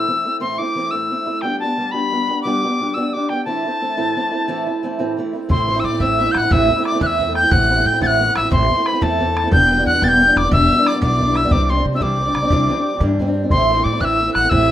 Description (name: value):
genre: celtic folk, Celtic slide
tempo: 119 BPM (dotted quarters)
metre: 12/8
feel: straight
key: A dorian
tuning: A4 = 440 Hz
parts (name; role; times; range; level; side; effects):
- reedy tin whistle; melody; 0.0-14.7 s; G5 to A6; -18 LUFS; left 1 dB; none
- picked old ladder-braced acoustic guitar; accompaniment; 0.0-14.7 s; E2 to G4; -20 LUFS; right 1 dB; plate reverb
- rich fiddle; second line; 5.5-14.7 s; A4 to G5; -28 LUFS; left 2 dB; plate reverb
- upright bass; bass; 5.5-14.7 s; E1 to C3; -22 LUFS; equal; none
- bodhran; percussion; 5.5-14.6 s; none; -21 LUFS; equal; none
room: wet studio reverb, RT60 0.5 s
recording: rough home demo mix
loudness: -15 LUFS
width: side -12 dB against mid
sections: 0.0-5.5 A section; 5.5-14.7 B section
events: none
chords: 0.0 Am; 1.4 G; 3.5 Am; 9.5 Em7; 11.5 Cadd9; 13.5 Am